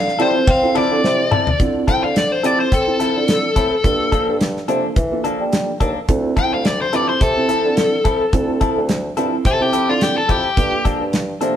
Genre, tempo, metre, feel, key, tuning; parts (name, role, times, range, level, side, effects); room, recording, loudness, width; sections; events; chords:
straight-eighth soul blues; 107 BPM; 4/4; swing 55% on 16ths; D minor; A4 = 440 Hz
biting overdriven guitar; melody; 0.0-10.8 s; F4 to G5; -19 LUFS; left 2 dB
mellow bassoon; bass; 0.0-11.5 s; D2 to C4; -22 LUFS; equal
damped 70s drum kit; drums; 0.1-11.6 s; hi-hat, kick drum, ride cymbal, snare drum, toms; -20 LUFS; equal
reed electric piano; accompaniment; 0.2-11.6 s; Bb3 to A4; -23 LUFS; right 5 dB; overdrive, fast tremolo
direct-recorded clean electric guitar; stabs; 0.2-11.6 s; F3 to A4; -24 LUFS; left 5 dB
wet stone room reverb, RT60 1.3 s; band playing live in one room; -15 LUFS; side -10 dB against mid
0.0-1.6 A section; 1.6-11.6 B section
overdriven electric guitar solo 0.0-1.6; drum fill 1.0-1.6
0.0 Dm9; 3.8 Gm9; 6.1 Dm9; 10.6 Gm9